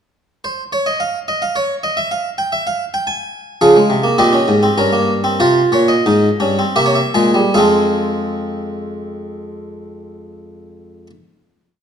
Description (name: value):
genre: classical, baroque-style 4-part fugue for harpsichord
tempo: 74-110 BPM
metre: 3/4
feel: straight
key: F minor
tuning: A4 = 441 Hz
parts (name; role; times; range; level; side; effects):
- harpsichord; solo; 0.4-11.1 s; F2 to Ab5; -14 LUFS; equal; none
room: wet recital hall reverb, RT60 1.4 s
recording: dark, warm production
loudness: -13 LUFS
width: side -8 dB against mid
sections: 0.3-7.5 exposition; 7.5-11.8 final chord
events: slowing down 2.8-7.5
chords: 0.3 N.C.; 3.6 Db; 4.8 Gdim; 5.4 C7sus4; 6.8 C7; 7.5 Fm